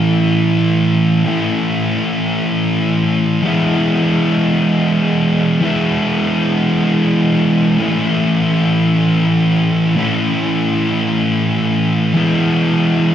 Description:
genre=rock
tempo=55 BPM (dotted quarters)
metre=6/8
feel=straight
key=E major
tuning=A4 = 440 Hz
part: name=thick fuzz guitar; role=solo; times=0.0-13.1 s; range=A2 to E4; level=-13 LUFS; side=equal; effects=distortion
room=wet concert hall reverb, RT60 2.3 s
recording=recorded in a church or concert hall, nothing above 10.5 kHz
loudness=-13 LUFS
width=side -10 dB against mid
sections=0.0-3.4 A section; 3.4-12.1 A section; 12.1-13.1 B section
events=none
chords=0.0 A; 3.4 E; 7.8 A; 12.1 E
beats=0.16 | 1.26 2.35 | 3.44 4.53 | 5.62 6.71 | 7.80 8.88 | 9.97 11.06 | 12.15

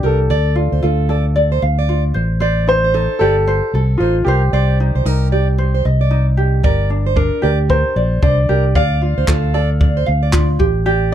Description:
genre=acoustic pop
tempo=114 BPM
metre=4/4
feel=swing 60% on 16ths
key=unclear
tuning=A4 = 440 Hz
part: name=warm upright piano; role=melody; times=0.0-10.3 s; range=F4 to F5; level=-19 LUFS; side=left 1 dB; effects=none
part: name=ukulele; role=accompaniment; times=0.0-11.1 s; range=D4 to F5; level=-21 LUFS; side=right 1 dB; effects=none
part: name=fingerpicked plugged-in steel-string acoustic guitar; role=arpeggios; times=0.0-11.1 s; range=A4 to D5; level=-23 LUFS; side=right 4 dB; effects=none
part: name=fingered electric bass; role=bass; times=0.0-11.1 s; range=G1 to D2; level=-15 LUFS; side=equal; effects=none
part: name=compact cocktail drum kit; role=drums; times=6.6-10.7 s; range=handclaps, kick drum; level=-17 LUFS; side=equal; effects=none
room=little or no reverb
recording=close, detailed microphones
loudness=-13 LUFS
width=side -10 dB against mid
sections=0.0-11.1 A section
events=none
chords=0.3 Dm; 2.2 Am7b5; 4.3 Cm; 6.6 Gm; 8.8 Dm; 10.6 A7(no3)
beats=| 0.30 0.83 1.36 1.89 | 2.42 2.94 3.47 4.00 | 4.53 5.06 5.58 6.11 | 6.64 7.17 7.70 8.22 | 8.75 9.28 9.81 10.33 | 10.86

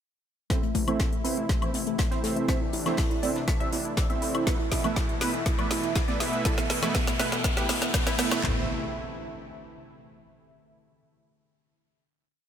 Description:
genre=progressive house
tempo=121 BPM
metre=4/4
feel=straight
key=A minor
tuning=A4 = 440 Hz
part: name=lush unison pad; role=sustained chords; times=0.5-8.7 s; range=B2 to E4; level=-35 LUFS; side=equal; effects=chorus, vintage 12-bit sampler grit, sidechain pumping
part: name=tight sequenced synth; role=arpeggios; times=0.5-8.6 s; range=A3 to E5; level=-33 LUFS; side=equal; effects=chorus, cassette tape, sidechain pumping, tape echo
part: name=soft supersaw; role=stabs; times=0.5-8.6 s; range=A3 to E5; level=-32 LUFS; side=right 4 dB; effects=sidechain pumping, low-pass filter, tape echo
part: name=fat analog bass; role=bass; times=0.5-8.7 s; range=E1 to A2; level=-43 LUFS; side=left 1 dB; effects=none
part: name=deep house drum kit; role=drums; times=0.5-8.4 s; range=hi-hat, snare drum, woodblock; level=-31 LUFS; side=left 1 dB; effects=none
part: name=house drum kit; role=drums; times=0.5-8.6 s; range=handclaps, kick drum, toms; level=-28 LUFS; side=equal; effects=none
part: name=jazz brush drum kit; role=drums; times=0.5-8.3 s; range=hi-hat, snare drum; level=-40 LUFS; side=left 3 dB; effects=high-pass filter on hats, high-pass filter on snare, high-pass filter on room
part: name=congas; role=percussion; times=0.5-8.2 s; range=none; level=-38 LUFS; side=right 6 dB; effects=none
part: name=riser and impact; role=sound effects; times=3.1-10.4 s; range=none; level=-38 LUFS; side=left 1 dB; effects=none
room=light reverb, digital ambience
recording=none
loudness=-24 LUFS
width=side -9 dB against mid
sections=0.5-8.4 build; 8.4-10.4 final chord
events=build-up 0.5-8.4; drum fill 0.5-8.4; filter sweep on supersaw synth 0.5-8.4; riser 3.1-8.4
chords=0.5 Am; 4.5 Esus4; 8.4 Am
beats=| 0.50 1.00 1.49 1.99 | 2.48 2.98 3.48 3.97 | 4.47 4.96 5.46 5.96 | 6.45 6.95 7.44 7.94 | 8.44 8.93 9.43 9.92

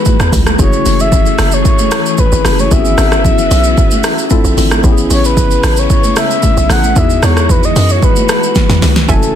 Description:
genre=amapiano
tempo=113 BPM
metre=4/4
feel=straight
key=unclear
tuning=A4 = 440 Hz
part: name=breathy flute-like synth lead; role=melody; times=0.0-9.4 s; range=A4 to F#5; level=-16 LUFS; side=left 2 dB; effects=chorus, digital delay
part: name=tine electric piano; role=accompaniment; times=0.0-9.4 s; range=A3 to G#5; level=-18 LUFS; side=left 3 dB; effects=medium stereo tremolo
part: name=phased string machine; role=sustained chords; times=0.0-9.4 s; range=C#3 to G#5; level=-19 LUFS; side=equal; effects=ensemble chorus, phaser, sidechain pumping
part: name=deep house drum kit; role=drums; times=0.1-9.3 s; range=hi-hat, kick drum, rim click, shaker, snare drum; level=-12 LUFS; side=equal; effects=soft clipping on snare
part: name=congas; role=percussion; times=0.1-9.2 s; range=none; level=-22 LUFS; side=right 3 dB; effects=none
part: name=hollow log drum bass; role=bass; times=0.2-9.3 s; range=F#1 to F#2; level=-13 LUFS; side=equal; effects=none
part: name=hollow square pluck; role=stabs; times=9.1-9.4 s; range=A4 to G#5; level=-19 LUFS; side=right 4 dB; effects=chorus
room=little or no reverb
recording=dense, heavily limited modern master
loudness=-8 LUFS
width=side -9 dB against mid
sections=0.0-9.4 A section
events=drum fill 8.6-9.1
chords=0.0 Emaj9; 0.6 F#m9; 2.7 C#m7/G#; 4.3 A#maj9#11; 4.8 Amaj9; 7.0 Emaj9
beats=0.06 | 0.59 1.12 1.65 2.18 | 2.71 3.25 3.78 4.31 | 4.84 5.37 5.90 6.43 | 6.96 7.49 8.03 8.56 | 9.09

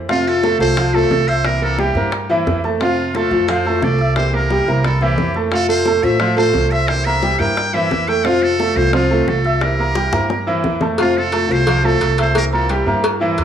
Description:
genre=latin, Cuban son and guajira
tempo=176 BPM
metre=4/4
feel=straight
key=F major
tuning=A4 = 444 Hz
part: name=nylon-string guitar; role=accompaniment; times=0.0-13.4 s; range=C3 to F4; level=-22 LUFS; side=left 5 dB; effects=none
part: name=upright bass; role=bass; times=0.0-13.4 s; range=C2 to A2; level=-21 LUFS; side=right 1 dB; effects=none
part: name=trumpet with metal mute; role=melody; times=0.1-13.0 s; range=F4 to G5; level=-22 LUFS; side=right 1 dB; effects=tape echo
part: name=flamenco guitar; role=second line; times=0.1-13.0 s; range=C4 to E5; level=-24 LUFS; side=right 3 dB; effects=none
part: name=bright concert grand piano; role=arpeggios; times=0.1-13.4 s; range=E3 to E6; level=-19 LUFS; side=right 2 dB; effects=tape echo
part: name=bongos and cowbell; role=percussion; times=0.1-13.4 s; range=none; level=-23 LUFS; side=left 4 dB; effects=none
room=light reverb, studio reverb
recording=dry, gritty hardware recording, cassette tape, small room ambience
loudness=-14 LUFS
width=side -9 dB against mid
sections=0.1-11.0 A section; 11.0-13.4 A section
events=drum fill 10.0-11.0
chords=0.1 Fmaj7; 1.4 C7; 2.8 Fmaj7; 4.2 C7; 5.5 Fmaj7; 6.9 C7; 8.2 Fmaj7; 9.6 C7; 11.0 Fmaj7; 12.4 C7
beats=| 0.08 0.42 0.77 1.10 | 1.45 1.79 2.13 2.47 | 2.81 3.15 3.49 3.83 | 4.17 4.50 4.84 5.18 | 5.53 5.87 6.21 6.55 | 6.89 7.23 7.57 7.91 | 8.25 8.59 8.93 9.27 | 9.62 9.96 10.30 10.64 | 10.98 11.32 11.67 12.01 | 12.35 12.70 13.04 13.38

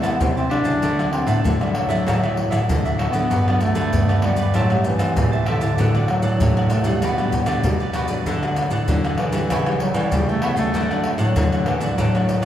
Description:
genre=samba and choro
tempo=97 BPM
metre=4/4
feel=straight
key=unclear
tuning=A4 = 440 Hz
part: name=warm bass clarinet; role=melody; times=0.0-12.4 s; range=D3 to D4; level=-23 LUFS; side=equal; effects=none
part: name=cavaquinho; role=accompaniment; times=0.0-12.4 s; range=D4 to A5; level=-30 LUFS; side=right 2 dB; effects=none
part: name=nylon-string guitar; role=accompaniment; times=0.0-12.4 s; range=G2 to F#4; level=-27 LUFS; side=left 1 dB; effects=none
part: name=nylon-string guitar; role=bass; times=0.0-12.4 s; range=G2 to E3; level=-23 LUFS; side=equal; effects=none
part: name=maracas, pandeiro, tamborim and surdo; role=percussion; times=0.0-12.4 s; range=none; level=-22 LUFS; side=left 1 dB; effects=none
room=wet cathedral reverb, RT60 4.4 s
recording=recorded in a church or concert hall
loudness=-17 LUFS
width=side -11 dB against mid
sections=0.0-12.4 A section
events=none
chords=0.0 Am7/C; 0.8 Dadd9; 3.3 Gmaj7; 4.6 Am7; 5.8 D/A; 7.0 Gmaj7/B; 8.3 D; 9.5 A7/C#; 10.7 D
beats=0.20 | 0.83 1.45 2.07 2.69 | 3.31 3.93 4.55 5.17 | 5.79 6.41 7.03 7.65 | 8.27 8.89 9.51 10.13 | 10.75 11.37 11.98

